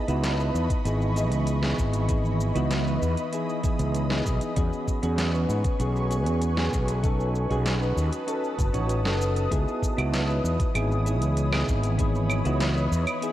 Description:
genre	sunset chillout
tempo	97 BPM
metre	4/4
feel	straight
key	C# minor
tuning	A4 = 442 Hz
part	soft electric-piano-like synth keys	accompaniment	0.0-13.3 s	B3 to C#5	-29 LUFS	equal	chorus, tremolo, auto-pan, vintage 12-bit sampler grit, low-pass filter, tape echo
part	ethereal airy pad	sustained chords	0.0-13.3 s	E3 to D#6	-31 LUFS	equal	ensemble chorus, built-in reverb, tremolo
part	fretless electric bass	bass	0.1-13.0 s	F#1 to G#2	-25 LUFS	equal	tube saturation
part	smooth R&B drum kit	drums	0.1-13.3 s	claves, hi-hat, shaker, snare drum	-33 LUFS	equal	none
part	electronic kick drum	drums	0.7-12.1 s	none	-26 LUFS	equal	none
room	light reverb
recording	worn, warbling old tape, cassette tape, warbly pitch drift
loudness	-23 LUFS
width	side -13 dB against mid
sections	0.0-13.3 A section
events	kick drops out 8.9-9.5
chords	0.0 C#m9; 4.6 E6; 7.0 B7; 9.5 C#m9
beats	0.23 0.85 1.47 | 2.09 2.71 3.33 3.94 | 4.56 5.18 5.80 6.42 | 7.04 7.66 8.28 8.89 | 9.51 10.13 10.75 11.37 | 11.99 12.61 13.22

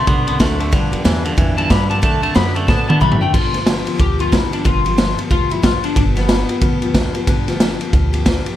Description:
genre	rockabilly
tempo	183 BPM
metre	4/4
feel	swing 62% on 8ths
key	G mixolydian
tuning	A4 = 439 Hz
part	electric guitar at the edge of break-up	melody	0.0-7.5 s	B3 to C6	-21 LUFS	left 4 dB	analog chorus, analog delay
part	picked steel-string acoustic guitar	accompaniment	0.0-8.6 s	G2 to A4	-23 LUFS	left 4 dB	none
part	twangy electric guitar	riff	0.0-3.3 s	G2 to B3	-22 LUFS	right 4 dB	none
part	upright bass	bass	0.0-8.4 s	G1 to A2	-21 LUFS	equal	none
part	raw garage drum kit	drums	0.1-8.5 s	crash cymbal, kick drum, ride cymbal, snare drum, toms	-16 LUFS	equal	none
room	little or no reverb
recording	none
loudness	-13 LUFS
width	side -12 dB against mid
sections	0.0-3.3 A section; 3.3-8.6 B section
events	clean electric guitar solo 0.0-3.3; drum fill 2.7-3.3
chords	0.0 D7; 0.7 G7; 2.0 D7; 3.3 G7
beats	0.07 0.40 | 0.73 1.05 1.38 1.71 | 2.03 2.36 2.69 3.02 | 3.34 3.67 4.00 4.32 | 4.65 4.98 5.31 5.63 | 5.96 6.29 6.62 6.94 | 7.27 7.60 7.93 8.26

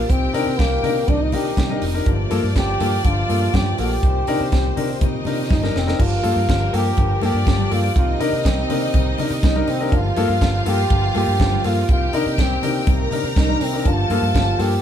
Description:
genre	disco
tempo	122 BPM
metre	4/4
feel	straight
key	G minor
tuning	A4 = 439 Hz
part	warm trombone	melody	0.0-14.8 s	Bb3 to G4	-24 LUFS	equal	none
part	rich studio string section	second line	0.0-14.8 s	Bb3 to Bb5	-27 LUFS	left 1 dB	none
part	overdriven tonewheel organ	sustained chords	0.0-14.8 s	Bb2 to G4	-30 LUFS	right 2 dB	chorus vibrato, slow rotary speaker
part	fingered electric bass	bass	0.0-14.8 s	F1 to C3	-22 LUFS	equal	none
part	warm grand piano	accompaniment	0.1-14.8 s	G2 to Bb4	-25 LUFS	left 4 dB	none
part	tight funk drum kit	drums	0.1-14.7 s	crash cymbal, hi-hat, kick drum, snare drum	-22 LUFS	right 1 dB	none
part	congas	percussion	0.6-14.5 s	none	-30 LUFS	left 4 dB	none
room	moderate stone room reverb, RT60 1.0 s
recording	band playing live in one room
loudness	-16 LUFS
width	side -9 dB against mid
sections	0.0-6.0 A section; 6.0-14.8 B section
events	drum fill 5.5-6.0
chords	0.1 Cm7; 2.1 Gm9; 4.0 Cm7; 6.0 Gm9; 8.0 Cm7; 9.9 Gm9; 11.9 Cm7; 13.9 Gm9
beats	| 0.09 0.58 1.08 1.57 | 2.06 2.55 3.05 3.54 | 4.03 4.52 5.01 5.51 | 6.00 6.49 6.98 7.47 | 7.96 8.45 8.95 9.44 | 9.93 10.42 10.91 11.40 | 11.89 12.38 12.87 13.37 | 13.86 14.35

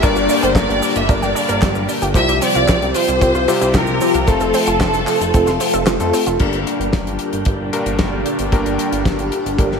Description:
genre	italo disco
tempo	113 BPM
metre	4/4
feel	straight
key	G minor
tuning	A4 = 436 Hz
part	clear studio violin section	melody	0.0-5.9 s	A4 to E5	-19 LUFS	equal	ping-pong delay
part	phased string machine	sustained chords	0.0-9.8 s	Bb2 to A4	-21 LUFS	equal	ensemble chorus, phaser
part	analog pluck	arpeggios	0.0-6.4 s	F3 to G4	-24 LUFS	right 5 dB	chorus, ping-pong delay
part	clear electric grand piano	stabs	0.0-9.8 s	G2 to Bb4	-22 LUFS	left 4 dB	ping-pong delay
part	chorused synth bass	bass	0.0-9.8 s	F1 to F2	-23 LUFS	equal	none
part	damped 70s drum kit	drums	0.0-9.8 s	cabasa, crash cymbal, handclaps, hi-hat, snare drum	-22 LUFS	left 2 dB	studio reverb, gated reverb
part	kick drum	drums	0.0-9.7 s	none	-18 LUFS	equal	studio reverb
room	light reverb, studio reverb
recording	none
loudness	-14 LUFS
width	side -6 dB against mid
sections	0.0-6.4 A section; 6.4-9.8 B section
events	kick drops out 5.9-6.4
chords	0.0 Gm; 2.2 Csus4; 4.3 F; 6.4 Gm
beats	| 0.03 0.56 1.09 1.62 | 2.15 2.68 3.21 3.75 | 4.28 4.81 5.34 5.87 | 6.40 6.93 7.46 7.99 | 8.52 9.05 9.59

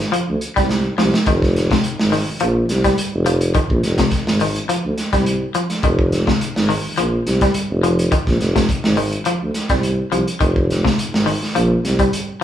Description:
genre	afrobeat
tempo	105 BPM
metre	4/4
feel	swing 54% on 16ths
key	F dorian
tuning	A4 = 440 Hz
part	electric guitar at the edge of break-up	arpeggios	0.0-12.4 s	C3 to G3	-21 LUFS	left 2 dB	warbly pitch drift
part	mellow tuba	bass	0.0-12.1 s	F1 to D2	-19 LUFS	equal	none
part	crunchy breakbeat drum kit	drums	0.0-12.3 s	hi-hat, kick drum, snare drum	-20 LUFS	right 1 dB	none
room	moderate large studio reverb, RT60 0.9 s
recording	band playing live in one room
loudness	-15 LUFS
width	side -10 dB against mid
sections	0.0-12.4 A section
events	drum fill 0.7-1.3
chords	0.0 F7(no3)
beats	0.13 0.70 | 1.27 1.84 2.41 2.98 | 3.56 4.13 4.70 5.27 | 5.84 6.41 6.98 7.55 | 8.12 8.69 9.26 9.83 | 10.41 10.98 11.55 12.12

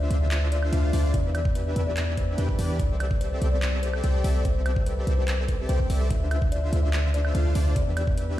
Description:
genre	future bass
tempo	145 BPM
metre	4/4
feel	half-time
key	C major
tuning	A4 = 435 Hz
part	buzzing kalimba	melody	0.0-8.3 s	B4 to E5	-33 LUFS	left 5 dB	sidechain pumping, dub echo
part	supersaw chords	riff	0.0-8.4 s	D3 to G5	-32 LUFS	equal	sidechain pumping, digital delay
part	warm 808-style bass	bass	0.0-8.4 s	C2 to E2	-24 LUFS	equal	sidechain pumping
part	trap drum kit	drums	0.1-8.3 s	handclaps, hi-hat, woodblock	-35 LUFS	right 1 dB	none
part	electronic kick drum	drums	1.1-8.2 s	none	-27 LUFS	equal	none
room	digital ambience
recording	played on a big sound system in a bare room, stone room reverb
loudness	-22 LUFS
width	side -14 dB against mid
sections	0.0-8.4 A section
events	none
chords	0.0 Dm9; 1.1 Em7; 2.8 C69; 6.1 Dm9; 7.8 Em7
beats	0.31 0.73 | 1.14 1.55 1.97 2.38 | 2.79 3.21 3.62 4.04 | 4.45 4.86 5.28 5.69 | 6.11 6.52 6.93 7.35 | 7.76 8.17

